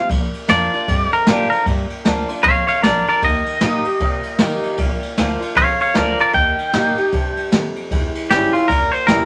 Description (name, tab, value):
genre	rockabilly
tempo	154 BPM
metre	4/4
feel	swing 61% on 8ths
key	Bb major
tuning	A4 = 437 Hz
part	twangy electric guitar	melody	0.0-9.3 s	F4 to G5	-19 LUFS	equal	none
part	picked swing-style acoustic guitar	accompaniment	0.0-9.3 s	E2 to G4	-25 LUFS	equal	none
part	upright bass	bass	0.1-9.3 s	E1 to Eb3	-29 LUFS	equal	none
part	jazz brush drum kit	drums	0.1-9.2 s	kick drum, ride cymbal, snare drum	-23 LUFS	equal	none
room	moderate studio reverb, RT60 0.6 s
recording	vinyl crackle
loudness	-17 LUFS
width	mono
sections	0.1-9.3 A section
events	none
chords	0.1 Bb; 3.2 Eb; 4.8 Bb; 6.3 Eb; 7.9 Edim7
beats	| 0.10 0.49 0.88 1.27 | 1.66 2.05 2.44 2.83 | 3.23 3.62 4.01 4.40 | 4.79 5.18 5.57 5.96 | 6.35 6.74 7.13 7.52 | 7.91 8.30 8.69 9.08